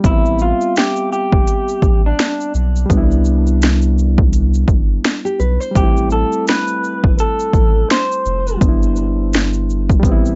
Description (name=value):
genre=lo-fi hip hop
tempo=84 BPM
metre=4/4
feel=swing 60% on 16ths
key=A minor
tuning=A4 = 440 Hz
part: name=overdriven reed electric piano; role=accompaniment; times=0.0-10.4 s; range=G3 to E5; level=-24 LUFS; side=equal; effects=cassette tape
part: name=soft dub sub bass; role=bass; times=0.0-10.3 s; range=F1 to C2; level=-19 LUFS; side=equal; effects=none
part: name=house drum kit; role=drums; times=0.0-10.4 s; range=finger snaps, hi-hat, kick drum, shaker, snare drum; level=-17 LUFS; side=equal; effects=overdrive
part: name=electric guitar through a small old amp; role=melody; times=0.1-8.6 s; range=D4 to C5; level=-22 LUFS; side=equal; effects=tape echo
part: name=nylon-string guitar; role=second line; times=5.2-5.9 s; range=G4 to C5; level=-25 LUFS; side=equal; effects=none
room=little or no reverb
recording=dry, gritty hardware recording, cassette tape, nothing above 7.9 kHz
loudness=-15 LUFS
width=mono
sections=0.0-10.4 A section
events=none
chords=0.0 Am9; 2.9 Cmaj7; 5.8 Am9; 8.6 Em7/G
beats=| 0.04 0.76 1.47 2.19 | 2.90 3.61 4.33 5.04 | 5.76 6.47 7.18 7.90 | 8.61 9.33 10.04